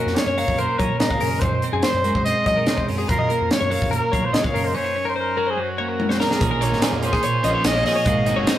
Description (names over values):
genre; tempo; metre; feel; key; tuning
math rock and midwest emo; 144 BPM; 4/4; straight; Gb lydian; A4 = 438 Hz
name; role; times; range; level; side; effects
clear trumpet; melody; 0.0-8.6 s; Gb4 to Eb5; -24 LUFS; equal; none
twelve-string electric guitar; accompaniment; 0.0-8.6 s; Gb2 to Bb4; -26 LUFS; right 3 dB; spring reverb
twelve-string electric guitar; arpeggios; 0.0-8.6 s; Ab4 to F5; -25 LUFS; left 4 dB; analog delay
growling fingered electric bass; bass; 0.1-8.5 s; Gb1 to Gb3; -28 LUFS; equal; overdrive
crisp fusion drum kit; drums; 0.1-8.6 s; hi-hat, kick drum, snare drum, toms; -23 LUFS; right 1 dB; none
overdriven electric guitar; riff; 6.6-8.6 s; Bb2 to Eb4; -28 LUFS; equal; none
room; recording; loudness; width
moderate stone room reverb, RT60 0.9 s; rough rehearsal-room recording, warm saturation, faint mains hum; -18 LUFS; side -12 dB against mid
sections
0.0-6.4 A section; 6.4-8.6 B section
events
drum fill 6.0-6.4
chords
0.0 Gbmaj7; 1.4 Ab7/Gb; 3.1 Gbmaj7; 4.8 Ebm7/Gb; 5.6 Gb; 6.4 Bbm11; 8.1 Ab9